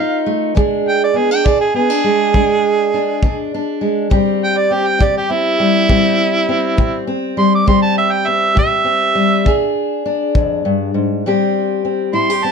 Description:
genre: acoustic country blues, solo or duo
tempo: 68 BPM (dotted quarters)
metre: 12/8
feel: straight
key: A minor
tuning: A4 = 441 Hz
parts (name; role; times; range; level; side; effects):
- overdriven harmonica; melody; 0.0-12.5 s; E4 to D6; -16 LUFS; right 3 dB; none
- fingerpicked steel-string acoustic guitar; accompaniment; 0.0-12.5 s; E2 to G#4; -16 LUFS; left 1 dB; none
- kick drum; drums; 0.6-10.5 s; none; -16 LUFS; left 1 dB; none
room: light reverb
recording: close, detailed microphones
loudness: -13 LUFS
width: side -6 dB against mid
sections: 0.0-11.2 A section; 11.2-12.5 A section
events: harmonica solo 0.0-12.5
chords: 0.0 F7; 0.6 E7; 4.1 Am7; 9.5 E7#9; 11.2 Am7

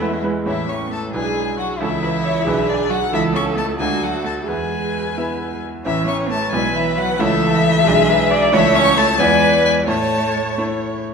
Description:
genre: quick classical-period movement for piano quintet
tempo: 89 BPM (dotted quarters)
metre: 6/8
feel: straight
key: A major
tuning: A4 = 440 Hz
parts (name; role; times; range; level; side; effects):
- rich violin; melody; 0.0-10.6 s; D5 to C#6; -20 LUFS; left 6 dB; none
- rich cello; second line; 0.0-10.6 s; D3 to C#4; -23 LUFS; right 5 dB; none
- warm violin; second line; 0.0-11.0 s; D4 to D5; -25 LUFS; left 4 dB; none
- bright concert grand piano; accompaniment; 0.0-11.1 s; A1 to E5; -22 LUFS; equal; none
- warm viola; accompaniment; 0.0-10.9 s; G#3 to D5; -22 LUFS; right 4 dB; none
room: wet recital hall reverb, RT60 1.5 s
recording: minimal, uncompressed stereo recording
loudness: -15 LUFS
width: side -6 dB against mid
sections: 0.5-11.1 A section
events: none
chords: 0.5 A; 1.1 E7/B; 1.8 A/C#; 2.5 G#dim/B; 3.1 A/C#; 3.8 D; 4.5 E; 5.9 A; 6.5 E5/B; 7.2 A/C#; 7.9 G#dim/B; 8.5 A/C#; 9.2 E7; 9.9 A

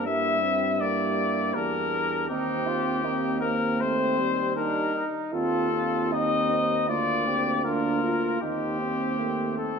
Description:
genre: classical, brass quintet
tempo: 79 BPM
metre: 4/4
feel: rubato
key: unclear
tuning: A4 = 438 Hz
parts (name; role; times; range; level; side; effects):
- warm trumpet; melody; 0.0-9.8 s; G4 to E5; -27 LUFS; left 6 dB; none
- warm flugelhorn; second line; 0.0-9.8 s; C4 to G4; -33 LUFS; right 6 dB; none
- mellow French horn; accompaniment; 0.0-9.8 s; G3 to C4; -33 LUFS; left 2 dB; none
- warm euphonium; accompaniment; 0.0-9.8 s; Bb3 to F4; -31 LUFS; right 3 dB; none
- clear tuba; bass; 0.0-9.8 s; D2 to G2; -32 LUFS; right 6 dB; none
room: wet recital hall reverb, RT60 1.5 s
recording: none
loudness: -23 LUFS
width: side -6 dB against mid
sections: 0.0-9.8 A section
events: none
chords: 0.0 Gm; 2.3 Cm/Eb; 5.3 F7/Eb; 6.9 Bb/D; 8.4 Cm7/Eb

